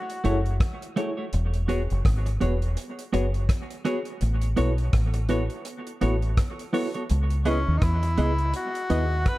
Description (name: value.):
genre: lovers rock reggae.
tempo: 83 BPM.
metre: 4/4.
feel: swing 59% on 16ths.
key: unclear.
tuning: A4 = 440 Hz.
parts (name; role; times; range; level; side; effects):
breathy tenor saxophone; melody; 0.0-0.6, 7.5-9.4 s; C#4 to B4; -30 LUFS; left 1 dB; tape echo.
damped 70s drum kit; drums; 0.1-9.4 s; hi-hat, kick drum, rim click; -25 LUFS; equal; none.
mellow FM electric piano; accompaniment; 0.2-9.1 s; E4 to D#5; -32 LUFS; left 2 dB; chorus, tremolo.
clean electric guitar; stabs; 0.2-9.0 s; A3 to D#5; -31 LUFS; right 3 dB; spring reverb, dub echo.
deep dub fingered electric bass; bass; 0.3-9.2 s; E1 to E2; -24 LUFS; equal; none.
room: light reverb, studio reverb.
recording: dark, warm production.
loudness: -23 LUFS.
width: side -17 dB against mid.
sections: 0.0-9.4 A section.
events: none.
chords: 0.0 F#m7; 1.3 E69; 4.2 A69; 7.1 C#m9.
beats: 0.60 | 1.32 2.05 2.77 3.49 | 4.21 4.93 5.65 6.38 | 7.10 7.82 8.54 9.26.